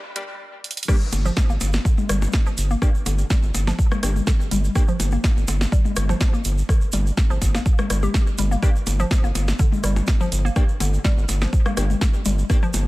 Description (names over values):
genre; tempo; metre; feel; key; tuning
minimal techno; 124 BPM; 4/4; swing 53% on 16ths; G minor; A4 = 443 Hz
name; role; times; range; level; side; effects
hollow square pluck; riff; 0.2-12.7 s; D3 to G4; -30 LUFS; equal; chorus, sidechain pumping, digital delay
wavetable chord stab; stabs; 0.2-4.8, 8.6-12.6 s; Bb3 to G4; -34 LUFS; left 1 dB; tape echo
round analog bass; bass; 0.2-12.9 s; G1; -21 LUFS; equal; sidechain pumping
house drum kit; drums; 0.2-12.8 s; crash cymbal, hi-hat, snare drum; -28 LUFS; equal; none
electronic kick drum; drums; 0.9-12.6 s; none; -18 LUFS; equal; high-pass filter on kick, high-pass filter on room
minimal click drum kit; percussion; 0.9-12.8 s; percussion blips, rim click, toms; -28 LUFS; left 4 dB; tape echo
tube shaker; percussion; 0.9-12.8 s; none; -33 LUFS; right 3 dB; none
room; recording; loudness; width
little or no reverb; high-pass filter; -18 LUFS; side -19 dB against mid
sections
0.9-12.9 A section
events
drum fill 0.6; drop 0.9-12.9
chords
0.0 Gm; 0.9 N.C.